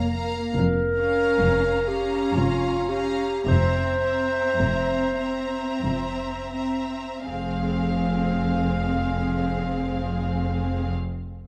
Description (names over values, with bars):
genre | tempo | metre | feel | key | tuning
classical, slow romantic movement for symphony orchestra | 39-71 BPM | 3/4 | rubato | F minor | A4 = 441 Hz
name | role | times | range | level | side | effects
rich studio violin section | melody | 0.0-10.9 s | F5 to Bb5 | -38 LUFS | equal | none
mellow clarinet | second line | 0.0-10.9 s | F4 to F5 | -28 LUFS | equal | none
rich studio violin section | second line | 0.0-10.9 s | Ab4 to F5 | -37 LUFS | equal | none
rich studio viola section | accompaniment | 0.0-10.9 s | Bb3 to Db4 | -32 LUFS | equal | none
rich studio cello section | bass | 0.0-10.9 s | F2 | -31 LUFS | equal | none
rich studio double bass section | bass | 0.0-10.9 s | F1 | -30 LUFS | equal | none
room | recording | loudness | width
moderate recital hall reverb, RT60 1.5 s | dark, warm production | -24 LUFS | mono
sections
0.0-7.3 A section; 7.3-11.5 B section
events
slowing down 0.0-7.3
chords
0.0 Bbm/F; 3.5 C7/F